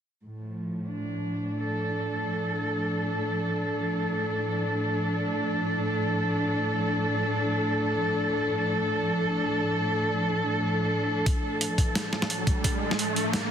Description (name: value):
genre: half-time drum and bass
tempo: free time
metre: none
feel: none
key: D minor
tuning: A4 = 437 Hz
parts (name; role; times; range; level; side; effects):
- dark chamber cello section; sustained chords; 0.2-13.5 s; A2 to A4; -26 LUFS; equal; sidechain pumping
- boom bap sampler-style drum kit; drums; 11.3-13.4 s; hi-hat, snare drum; -29 LUFS; right 1 dB; overdrive, low-pass filter on hats, studio reverb, low-pass filter on snare
- electronic kick drum; drums; 11.3-12.7 s; none; -25 LUFS; equal; studio reverb
- riser; sound effects; 11.7-13.5 s; none; -32 LUFS; right 1 dB; none
room: moderate huge ambient reverb, RT60 7.6 s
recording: dense, heavily limited modern master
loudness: -25 LUFS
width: side -8 dB against mid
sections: 0.2-11.3 A section; 11.3-13.5 B section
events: build-up 11.3-13.5; riser 11.7-13.5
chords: 0.2 Dm